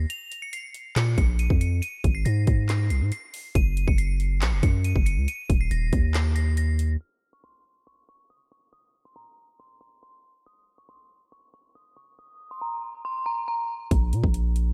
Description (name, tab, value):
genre	hip hop, trap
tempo	139 BPM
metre	4/4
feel	half-time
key	Bb minor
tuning	A4 = 440 Hz
part	metallic FM bell	melody	0.0-13.9 s	Bb5 to F7	-36 LUFS	equal	chorus, low-pass filter, analog delay
part	long sustained 808-style bass	bass	0.0-7.0, 13.9-14.7 s	Eb1 to Bb2	-25 LUFS	equal	none
part	trap drum kit	drums	0.1-6.9, 13.9-14.7 s	handclaps, hi-hat, kick drum	-27 LUFS	equal	none
room	digital ambience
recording	low-pass filter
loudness	-25 LUFS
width	mono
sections	0.0-7.0 A section; 7.0-13.9 B section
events	break 0.1-1.0; filter sweep 7.0-13.9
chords	0.1 Bb5; 1.8 Ab; 3.6 Gb5; 5.3 Eb5; 7.0 N.C.; 13.9 Bb5